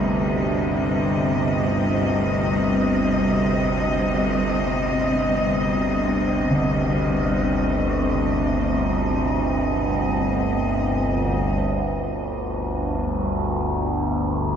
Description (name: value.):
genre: dark ambient drone.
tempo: free time.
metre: none.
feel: none.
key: unclear.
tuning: A4 = 440 Hz.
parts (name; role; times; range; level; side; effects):
bright symphonic cello section; sustained chords; 0.0-11.6 s; C3 to Eb5; -23 LUFS; equal; none.
clear baby grand piano; arpeggios; 0.0-14.6 s; D2 to D4; -31 LUFS; right 1 dB; none.
overtone-sweeping drone; drone; 0.0-14.6 s; G1 to D2; -22 LUFS; equal; chorus, built-in reverb, phaser.
bronze singing bowl; texture; 0.0-11.6 s; none; barely audible; none; none.
room: wet huge ambient reverb, RT60 7.5 s.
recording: dreamy mix soaked in reverb, cassette tape, lossy compression artefacts.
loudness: -20 LUFS.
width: side -8 dB against mid.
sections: 0.0-11.6 A section; 11.6-14.6 B section.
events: none.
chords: 0.0 Cmadd9/G; 11.6 G5.